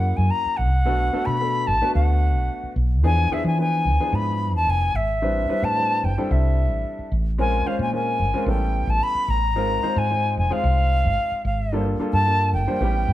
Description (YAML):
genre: electric jazz fusion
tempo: 110 BPM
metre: 4/4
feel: straight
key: unclear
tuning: A4 = 439 Hz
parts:
  - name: silver concert flute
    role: melody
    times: 0.0-13.1 s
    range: E5 to B5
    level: -23 LUFS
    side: left 1 dB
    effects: none
  - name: warm grand piano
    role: accompaniment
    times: 0.0-13.1 s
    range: F3 to C5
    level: -27 LUFS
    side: left 1 dB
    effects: none
  - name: woody fretless electric bass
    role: bass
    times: 0.0-13.1 s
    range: F1 to E3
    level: -22 LUFS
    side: equal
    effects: none
room: light reverb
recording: band playing live in one room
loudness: -19 LUFS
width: side -14 dB against mid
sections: 0.0-13.1 A section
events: none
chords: 0.0 Gb7; 0.9 Bm7; 3.0 E7b9; 5.2 Am11; 7.4 Bbm7; 8.5 A9; 9.6 Ab69; 11.7 Gm7